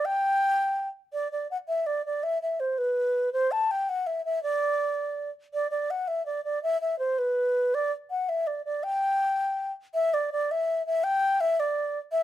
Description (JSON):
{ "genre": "celtic folk", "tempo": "109 BPM (dotted quarters)", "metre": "6/8", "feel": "straight", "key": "G major", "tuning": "A4 = 440 Hz", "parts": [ { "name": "mellow baroque flute", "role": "solo", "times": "0.0-12.2 s", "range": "B4 to A5", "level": "-25 LUFS", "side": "equal", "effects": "none" } ], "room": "light reverb", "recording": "close, detailed microphones", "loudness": "-25 LUFS", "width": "side -12 dB against mid", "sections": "0.0-1.1 A section; 1.1-9.9 A section; 9.9-12.2 B section", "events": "none", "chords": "none", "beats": "| 0.04 0.59 | 1.14 1.69 | 2.24 2.79 | 3.33 3.88 | 4.43 4.98 | 5.53 6.08 | 6.63 7.18 | 7.73 8.28 | 8.82 9.37 | 9.92 10.47 | 11.02 11.56 | 12.11" }